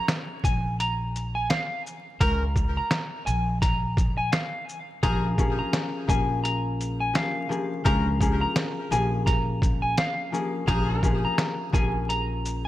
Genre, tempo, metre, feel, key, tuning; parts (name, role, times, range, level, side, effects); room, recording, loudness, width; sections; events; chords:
hip hop, boom-bap hip-hop; 85 BPM; 4/4; swing 59% on 16ths; Bb minor; A4 = 440 Hz
electric guitar at the edge of break-up; melody; 0.0-12.7 s; F5 to Bb5; -29 LUFS; equal; lush chorus, digital delay
trip hop sampler-style drum kit; drums; 0.1-12.6 s; hi-hat, kick drum, shaker, snare drum; -26 LUFS; equal
upright bass; bass; 0.4-12.7 s; Bb1 to Db2; -28 LUFS; equal
warm horn section; stabs; 2.2-11.1 s; F3 to Bb4; -36 LUFS; left 2 dB; digital delay
concert harp; accompaniment; 5.0-12.7 s; F3 to Ab4; -30 LUFS; left 3 dB
light reverb, studio ambience; bright 1980s-style digital production, vinyl crackle; -23 LUFS; side -14 dB against mid
0.0-12.7 A section
break 0.0-5.0
0.0 Bb7(no3); 2.2 Db5; 5.0 Bbm7